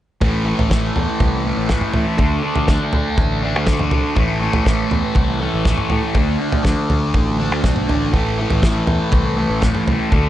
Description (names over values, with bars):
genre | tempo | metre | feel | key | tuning
psychedelic rock | 121 BPM | 4/4 | straight | A minor | A4 = 440 Hz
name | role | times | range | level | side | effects
thick fuzz guitar | riff | 0.2-10.3 s | A2 to D4 | -19 LUFS | equal | distortion, phaser
picked electric bass | bass | 0.2-10.3 s | A1 to A2 | -22 LUFS | equal | none
damped 70s drum kit | drums | 0.2-10.2 s | kick drum, snare drum, toms | -18 LUFS | equal | none
room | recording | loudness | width
light reverb, small room ambience | nothing above 10.4 kHz | -15 LUFS | side -13 dB against mid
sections
0.2-10.3 A section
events
none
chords
0.2 Am; 2.2 D5; 4.2 Am; 6.2 D5; 8.1 Am